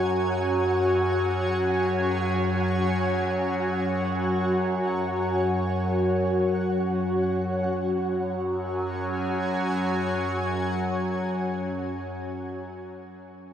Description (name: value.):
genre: dark ambient drone.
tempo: free time.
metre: none.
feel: none.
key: unclear.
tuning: A4 = 440 Hz.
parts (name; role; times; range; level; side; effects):
granular cloud pad; sustained chords; 0.0-12.1 s; F#4 to G#5; -26 LUFS; equal; built-in reverb.
overtone-sweeping drone; drone; 0.0-12.1 s; F#2 to F#3; -27 LUFS; equal; chorus, built-in reverb.
flickering grainy texture; texture; 0.0-7.7 s; F#5; -38 LUFS; right 3 dB; built-in reverb.
room: wet huge ambient reverb, RT60 8.1 s.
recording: none.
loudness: -23 LUFS.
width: side -9 dB against mid.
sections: 0.0-7.7 A section; 7.7-11.4 B section.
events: none.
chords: 0.0 F#5.